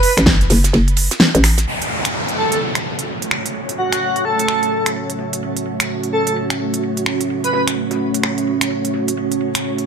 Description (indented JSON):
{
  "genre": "bass house",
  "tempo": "128 BPM",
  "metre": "4/4",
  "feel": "swing 61% on 16ths",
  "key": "F# minor",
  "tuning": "A4 = 440 Hz",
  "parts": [
    { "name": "airy dreamy lead", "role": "melody", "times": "0.0-7.6 s", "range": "F#4 to B4", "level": "-20 LUFS", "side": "equal", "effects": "chorus, cassette tape, ping-pong delay" },
    { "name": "big-room dance drum kit", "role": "drums", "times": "0.0-9.9 s", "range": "finger snaps, hi-hat, snare drum", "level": "-18 LUFS", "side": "equal", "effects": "none" },
    { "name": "damped 70s drum kit", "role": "drums", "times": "0.0-9.8 s", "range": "hi-hat, ride cymbal, snare drum", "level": "-32 LUFS", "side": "right 2 dB", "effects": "high-pass filter on cymbals, low-pass filter on cymbals, high-pass filter on hats, low-pass filter on hats, high-pass filter on snare, low-pass filter on snare, high-pass filter on room, low-pass filter on room" },
    { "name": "hollow knocking FM bass", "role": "bass", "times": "0.2-1.7 s", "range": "F#1 to A1", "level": "-14 LUFS", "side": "equal", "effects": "overdrive, sidechain pumping" },
    { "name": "dark analog pad", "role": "sustained chords", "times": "2.9-9.9 s", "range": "A3 to G#5", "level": "-23 LUFS", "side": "right 2 dB", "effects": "chorus, sidechain pumping" },
    { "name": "downlifter", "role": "sound effects", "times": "1.7-5.4 s", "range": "none", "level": "-24 LUFS", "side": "equal", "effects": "none" },
    { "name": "ethereal airy pad", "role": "texture", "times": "2.7-9.9 s", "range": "A3 to C#5", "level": "-25 LUFS", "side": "right 3 dB", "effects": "ensemble chorus, built-in reverb, sidechain pumping" }
  ],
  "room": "light reverb, studio reverb",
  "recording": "none",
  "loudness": "-15 LUFS",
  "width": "side -7 dB against mid",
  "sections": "0.0-1.7 A section; 1.7-9.9 B section",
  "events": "filter sweep on analog synth pad 1.7-9.9",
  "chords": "0.0 F#m",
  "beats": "0.27 0.73 1.20 | 1.67 2.14 2.61 3.08 | 3.55 4.02 4.48 4.95 | 5.42 5.89 6.36 6.83 | 7.30 7.77 8.23 8.70 | 9.17 9.64"
}